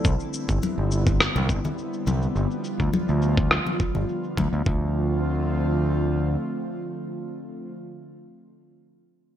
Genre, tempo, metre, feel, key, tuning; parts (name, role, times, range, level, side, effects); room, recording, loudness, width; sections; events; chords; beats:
sunset chillout; 104 BPM; 4/4; straight; D dorian; A4 = 440 Hz
airy breathy pad; sustained chords; 0.0-7.7 s; D3 to F4; -29 LUFS; right 1 dB; chorus
growling fingered electric bass; bass; 0.0-6.4 s; G1 to D2; -24 LUFS; equal; overdrive
electronic kick drum; drums; 0.0-4.8 s; -24 LUFS; equal; overdrive
electronic shaker and rim click; drums; 0.0-4.6 s; -24 LUFS; equal; overdrive, low-pass filter on cymbals, low-pass filter on perc, low-pass filter on snare, gated reverb
congas; percussion; 0.6-4.5 s; -30 LUFS; left 4 dB
light reverb; bright 1980s-style digital production; -22 LUFS; side -10 dB against mid
0.0-4.7 A section; 4.7-7.0 B section
filter sweep on drum 0.0-4.7; filter sweep on fingered electric bass 0.0-4.7
0.0 Cmaj9; 2.4 G7; 4.7 Dm7
| 0.05 0.62 1.20 1.78 | 2.35 2.93 3.51 4.08 | 4.66 5.24 5.82 6.39